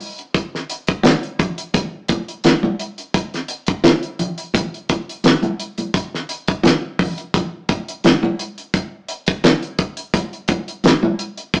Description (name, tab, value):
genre	soul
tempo	86 BPM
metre	4/4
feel	swing 54% on 16ths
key	none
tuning	none
part	damped 70s drum kit	drums	0.0-11.6 s	hi-hat, kick drum, snare drum	-20 LUFS	equal	none
part	congas	percussion	0.3-11.6 s	none	-24 LUFS	equal	none
room	wet studio reverb, RT60 0.5 s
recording	rough rehearsal-room recording, warm saturation, small speaker sound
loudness	-19 LUFS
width	mono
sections	0.0-11.6 A section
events	none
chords	none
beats	| 0.35 1.05 1.75 2.44 | 3.14 3.84 4.54 5.24 | 5.94 6.64 7.34 8.04 | 8.74 9.44 10.14 10.84 | 11.54